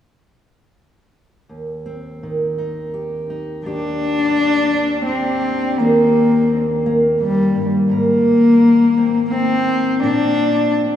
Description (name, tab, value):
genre	folk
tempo	84 BPM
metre	3/4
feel	straight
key	Eb major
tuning	A4 = 441 Hz
part	fingerpicked steel-string acoustic guitar	accompaniment	1.5-11.0 s	Eb2 to Bb4	-20 LUFS	right 2 dB	none
part	warm cello	melody	3.7-11.0 s	G3 to D4	-15 LUFS	left 2 dB	none
room	wet cathedral reverb, RT60 5.2 s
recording	in a vast, echoing space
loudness	-14 LUFS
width	side -10 dB against mid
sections	1.5-3.6 A section; 3.6-11.0 B section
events	none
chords	1.5 Eb6; 5.8 Cm7/Eb; 7.9 Abadd9; 10.0 Bbadd9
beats	| 1.50 2.21 2.93 | 3.64 4.35 5.07 | 5.78 6.50 7.21 | 7.91 8.62 9.33 | 10.04 10.75